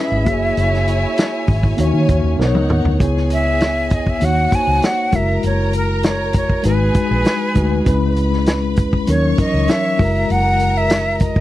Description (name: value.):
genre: lush 1970s-style soul.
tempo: 99 BPM.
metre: 4/4.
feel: straight.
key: C# dorian.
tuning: A4 = 440 Hz.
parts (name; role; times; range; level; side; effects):
breathy bright jazz flute; melody; 0.0-11.4 s; A#4 to G#5; -20 LUFS; equal; none.
clear studio string section; second line; 0.0-11.4 s; C#4 to C#6; -27 LUFS; equal; none.
mellow tine electric piano; accompaniment; 0.0-11.4 s; D#3 to E5; -20 LUFS; left 2 dB; medium stereo tremolo.
vintage muted fingered electric bass; bass; 0.1-11.4 s; F#1 to D#3; -18 LUFS; equal; none.
warm soul drum kit; drums; 0.3-11.4 s; hi-hat, kick drum, snare drum, toms; -18 LUFS; equal; none.
room: little or no reverb.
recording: dry, close 1970s-style studio recording, lossy compression artefacts.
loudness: -14 LUFS.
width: side -15 dB against mid.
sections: 0.0-3.0 A section; 3.0-11.4 B section.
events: drum fill 2.4-3.0; flute solo 3.0-11.4.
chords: 0.3 F#9; 1.8 D#m7; 2.4 Bmaj9; 3.0 C#m7; 4.2 D#m7; 5.1 F#9; 6.7 G#m7; 7.9 C#m7; 9.1 D#m7; 10.0 F#9.